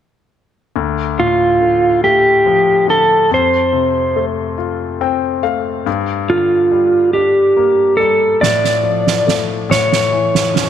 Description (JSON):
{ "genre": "six-eight pop ballad", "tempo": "47 BPM (dotted quarters)", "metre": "6/8", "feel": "straight", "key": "D minor", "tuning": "A4 = 442 Hz", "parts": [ { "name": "warm concert grand piano", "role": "accompaniment", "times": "0.8-10.7 s", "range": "D2 to G5", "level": "-19 LUFS", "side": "left 8 dB", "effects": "none" }, { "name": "clean lap steel guitar", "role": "melody", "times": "1.2-10.7 s", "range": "F4 to D5", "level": "-12 LUFS", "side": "right 1 dB", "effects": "slapback echo" }, { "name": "snare drum", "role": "drums", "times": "8.4-10.7 s", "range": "none", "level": "-17 LUFS", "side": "right 8 dB", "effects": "none" } ], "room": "moderate echo chamber reverb, RT60 2.5 s", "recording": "1960s-style stereo with parts hard left and right", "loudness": "-12 LUFS", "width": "side -9 dB against mid", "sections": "0.8-10.7 A section", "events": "grand piano fill 4.6-5.9; drum fill 8.4-10.7", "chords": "0.8 Dm; 3.3 F; 5.9 Gm; 8.4 Dm/A; 9.7 A" }